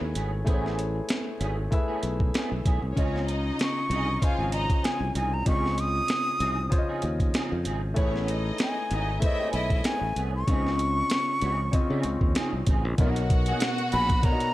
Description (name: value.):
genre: lush 1970s-style soul.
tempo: 96 BPM.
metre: 4/4.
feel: swing 54% on 16ths.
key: Db major.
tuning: A4 = 439 Hz.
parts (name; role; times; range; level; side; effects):
warm grand piano; accompaniment; 0.0-14.5 s; Cb3 to E5; -32 LUFS; left 2 dB; none.
electric guitar through a small old amp; riff; 0.0-14.5 s; E3 to G#4; -36 LUFS; right 3 dB; ensemble chorus.
modern bright fingered electric bass; bass; 0.0-14.2 s; G#1 to Db3; -29 LUFS; equal; none.
boom bap sampler-style drum kit; drums; 0.2-14.5 s; hi-hat, kick drum, snare drum; -26 LUFS; equal; none.
rich studio string section; second line; 2.9-14.5 s; Db4 to Gb5; -34 LUFS; equal; none.
breathy bright jazz flute; melody; 3.6-14.5 s; Eb5 to Eb6; -29 LUFS; equal; tape echo.
room: light reverb.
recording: dark, warm production.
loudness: -24 LUFS.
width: side -16 dB against mid.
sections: 0.0-13.0 A section; 13.0-14.5 B section.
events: none.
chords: 0.0 Amaj9; 3.0 Dbmaj9; 8.0 Amaj9; 10.5 Dbmaj9; 13.0 Cbmaj7.